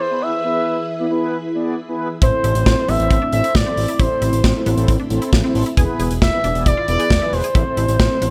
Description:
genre	synth-pop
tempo	135 BPM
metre	4/4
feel	straight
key	A harmonic minor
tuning	A4 = 441 Hz
part	expressive portamento lead	melody	0.0-8.3 s	C5 to E5	-23 LUFS	equal	chorus
part	ensemble organ-string	sustained chords	0.0-8.3 s	E3 to B4	-30 LUFS	equal	phaser, ensemble chorus
part	mellow synth brass	accompaniment	0.1-8.3 s	B3 to D5	-27 LUFS	equal	chorus
part	resonant blip pluck	arpeggios	2.2-8.3 s	B3 to G#4	-30 LUFS	equal	chorus, tape echo
part	fat analog bass	bass	2.2-8.3 s	E1 to A1	-22 LUFS	equal	none
part	modern studio drum kit	drums	2.2-8.3 s	hi-hat, kick drum, snare drum	-20 LUFS	equal	gated reverb
room	light reverb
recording	none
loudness	-18 LUFS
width	mono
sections	0.0-8.3 A section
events	none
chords	0.0 E; 2.2 Am; 5.8 E; 7.6 Am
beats	0.00 | 0.44 0.88 1.33 1.77 | 2.22 2.66 3.11 3.55 | 4.00 4.44 4.88 5.33 | 5.77 6.22 6.66 7.11 | 7.55 8.00

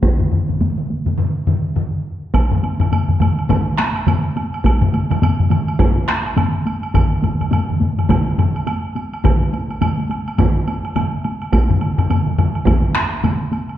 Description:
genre	japanese traditional, taiko drum ensemble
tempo	104 BPM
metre	4/4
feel	swing 60% on 16ths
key	none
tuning	none
part	taiko ensemble	percussion	0.0-13.7 s	none	-23 LUFS	equal	none
part	taiko ensemble	percussion	0.0-13.4 s	none	-19 LUFS	left 3 dB	none
part	taiko ensemble	percussion	0.0-13.4 s	none	-22 LUFS	right 3 dB	none
part	taiko ensemble	percussion	0.0-12.8 s	none	-19 LUFS	right 1 dB	none
part	woodblock	percussion	2.3-13.8 s	none	-27 LUFS	right 4 dB	none
room	wet recital hall reverb, RT60 1.6 s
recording	dark, warm production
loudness	-15 LUFS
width	side -12 dB against mid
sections	0.0-2.3 A section; 2.3-13.8 B section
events	break 1.2-2.3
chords	none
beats	| 0.02 0.60 1.18 1.76 | 2.34 2.92 3.49 4.07 | 4.65 5.22 5.80 6.37 | 6.95 7.52 8.10 8.67 | 9.24 9.81 10.39 10.96 | 11.53 12.10 12.67 13.24

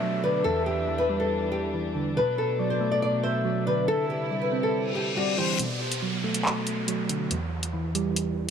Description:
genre	hip hop, drill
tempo	140 BPM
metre	4/4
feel	half-time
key	B phrygian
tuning	A4 = 440 Hz
part	flamenco guitar	melody	0.0-5.5 s	F#4 to D5	-28 LUFS	left 2 dB	digital delay
part	breathy flute-like synth lead	second line	0.0-5.6 s	B4 to E5	-33 LUFS	left 3 dB	chorus, digital delay
part	soft electric-piano-like synth keys	accompaniment	0.0-8.5 s	E2 to C4	-29 LUFS	right 2 dB	chorus, low-pass filter
part	warm symphonic string section	sustained chords	0.0-5.6 s	E2 to E4	-34 LUFS	right 1 dB	none
part	downlifter and reverse cymbal	sound effects	0.0-2.2, 4.8-8.5 s	none	-34 LUFS	left 1 dB	none
part	drill drum kit	drums	5.6-8.3 s	handclaps, hi-hat	-28 LUFS	equal	none
room	light reverb, digital ambience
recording	none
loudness	-24 LUFS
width	side -7 dB against mid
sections	0.0-5.6 A section; 5.6-8.5 B section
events	reverse cymbal 4.8-5.6; break 5.6-8.5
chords	0.5 Em7; 2.2 Bm7; 3.9 Cadd9; 5.6 Bm7; 7.3 Em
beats	0.02 | 0.45 0.88 1.31 1.74 | 2.16 2.59 3.02 3.45 | 3.88 4.31 4.74 5.16 | 5.59 6.02 6.45 6.88 | 7.31 7.74 8.16

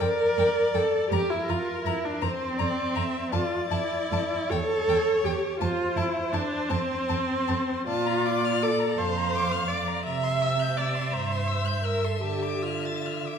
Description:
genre	classical, slow romantic movement for string quartet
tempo	54 BPM (dotted quarters)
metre	6/8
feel	uneven beats, rubato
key	unclear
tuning	A4 = 442 Hz
part	rich violin	melody	0.0-13.4 s	G5 to A6	-35 LUFS	left 9 dB	none
part	clear violin	second line	0.0-13.4 s	Bb4 to F5	-32 LUFS	left 5 dB	none
part	rich viola	accompaniment	0.0-13.4 s	C4 to E5	-26 LUFS	right 1 dB	none
part	warm cello	bass	0.0-13.3 s	E2 to D3	-31 LUFS	right 3 dB	none
room	wet recital hall reverb, RT60 1.6 s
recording	recorded in a church or concert hall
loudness	-24 LUFS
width	side -7 dB against mid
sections	0.0-13.4 A section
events	none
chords	0.0 Gm7/F (rootless); 1.1 Bbsus2/F; 3.3 N.C.; 4.5 A7/E; 5.6 F; 7.9 Bbmaj7; 10.0 C; 12.2 Dm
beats	| 1.10 2.22 | 3.33 4.50 | 5.61 6.70 | 7.88 8.97 | 10.04 11.12 | 12.23

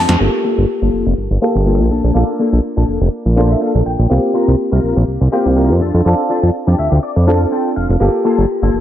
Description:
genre	house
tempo	123 BPM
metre	4/4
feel	swing 53% on 16ths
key	G minor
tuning	A4 = 440 Hz
part	clear grand piano	accompaniment	0.0-8.8 s	Bb3 to A4	-18 LUFS	equal	phaser, low-pass filter
part	electric guitar with an envelope filter	riff	0.0-8.8 s	Bb3 to A5	-19 LUFS	left 3 dB	ensemble chorus, low-pass filter
part	fat analog bass	bass	0.0-8.8 s	F1 to F2	-13 LUFS	equal	low-pass filter
room	light reverb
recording	none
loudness	-12 LUFS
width	side -11 dB against mid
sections	0.2-8.8 A section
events	clean electric guitar fill 0.0, 3.1-4.1, 6.5-8.0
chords	0.2 Gm9; 1.9 Bbmaj7; 4.1 C7sus4; 5.8 F6; 8.0 Gm9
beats	| 0.20 0.69 1.18 1.67 | 2.15 2.64 3.13 3.62 | 4.10 4.59 5.08 5.57 | 6.05 6.54 7.03 7.52 | 8.01 8.49

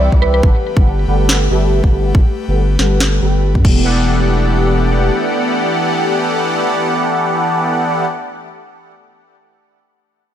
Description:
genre	future bass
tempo	140 BPM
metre	4/4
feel	swing 55% on 16ths, half-time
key	E minor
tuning	A4 = 440 Hz
part	airy breathy pad	sustained chords	0.0-8.1 s	E3 to B4	-24 LUFS	left 5 dB	chorus, sidechain pumping
part	soft supersaw	riff	0.0-8.1 s	E3 to G5	-16 LUFS	equal	phaser, sidechain pumping, low-pass filter, ping-pong delay
part	saturated sub bass	bass	0.0-5.1 s	E1 to G2	-15 LUFS	equal	sidechain pumping
part	electronic kick drum	drums	0.1-3.7 s	none	-12 LUFS	equal	small room ambience
part	trap drum kit	drums	1.3-3.7 s	crash cymbal, snare drum	-19 LUFS	equal	small room ambience
room	light reverb, digital ambience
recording	none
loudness	-12 LUFS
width	side -10 dB against mid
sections	0.0-3.9 A section; 3.9-7.3 B section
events	filter sweep on supersaw synth 0.0-3.9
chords	0.4 Gmaj9; 3.6 Em11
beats	0.01 | 0.43 0.86 1.29 1.72 | 2.15 2.58 3.00 3.43 | 3.86 4.29 4.72 5.15 | 5.58 6.00 6.43 6.86

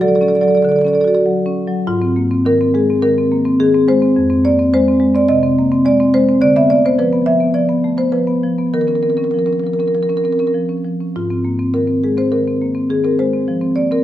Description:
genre	classical, contemporary piece for solo marimba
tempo	95-108 BPM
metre	4/4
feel	rubato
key	Ab lydian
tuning	A4 = 440 Hz
part	marimba with medium mallets	solo	0.0-14.0 s	F2 to Fb5	-12 LUFS	equal	none
room	wet recital hall reverb, RT60 1.5 s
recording	minimal, uncompressed stereo recording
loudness	-13 LUFS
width	side -13 dB against mid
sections	0.0-1.9 A section; 1.9-14.0 B section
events	none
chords	0.0 Dmaj7; 1.9 Ab6; 4.2 Fm; 6.4 Dm6; 8.7 Ebsus2; 11.2 Ab6; 13.5 F5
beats	0.01 0.63 1.25 | 1.87 2.46 3.03 3.60 | 4.18 4.74 5.29 5.85 | 6.41 6.97 7.55 8.13 | 8.73 9.33 9.93 10.54 | 11.15 11.74 12.31 12.89 | 13.47

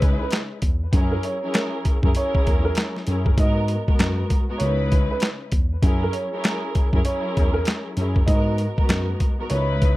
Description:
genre	hip hop, boom-bap hip-hop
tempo	98 BPM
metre	4/4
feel	swing 62% on 16ths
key	unclear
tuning	A4 = 440 Hz
part	dark upright piano	melody	0.0-10.0 s	A#4 to D#5	-29 LUFS	right 2 dB	high-pass filter, low-pass filter, ping-pong delay
part	warm studio string section	accompaniment	0.0-10.0 s	G#2 to B4	-27 LUFS	left 1 dB	cassette tape, high-pass filter, low-pass filter
part	mellow tine electric piano	bass	0.0-10.0 s	C#2 to G#2	-23 LUFS	equal	overdrive
part	boom bap sampler-style drum kit	drums	0.0-10.0 s	handclaps, hi-hat, kick drum, snare drum	-20 LUFS	equal	none
room	little or no reverb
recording	none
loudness	-19 LUFS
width	side -18 dB against mid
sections	0.0-10.0 A section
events	none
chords	0.0 C#m7; 0.9 F#9; 3.4 G#m7; 4.6 C#m7; 5.8 F#9; 8.3 G#m7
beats	0.32 | 0.93 1.54 2.15 2.77 | 3.38 3.99 4.60 5.22 | 5.83 6.44 7.05 7.67 | 8.28 8.89 9.50

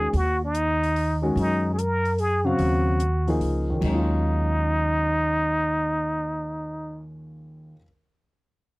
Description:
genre	modal jazz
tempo	147 BPM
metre	3/4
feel	swing 67% on 8ths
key	Eb minor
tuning	A4 = 440 Hz
part	trumpet with plunger mute	melody	0.0-7.0 s	Eb4 to Bb4	-25 LUFS	equal	none
part	warm grand piano	accompaniment	0.0-7.8 s	Eb2 to F5	-28 LUFS	left 1 dB	none
part	upright bass	bass	0.0-7.7 s	Db2 to Gb2	-26 LUFS	equal	none
part	compact cocktail drum kit	drums	0.1-3.9 s	crash cymbal, hi-hat, kick drum	-38 LUFS	equal	none
room	little or no reverb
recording	dry, close 1970s-style studio recording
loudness	-21 LUFS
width	side -23 dB against mid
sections	0.0-3.8 A section; 3.8-6.3 B section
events	none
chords	0.0 Ebm11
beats	| 0.14 0.55 0.96 | 1.37 1.78 2.18 | 2.59 3.00 3.41 | 3.82 4.23 4.64 | 5.05 5.46 5.86

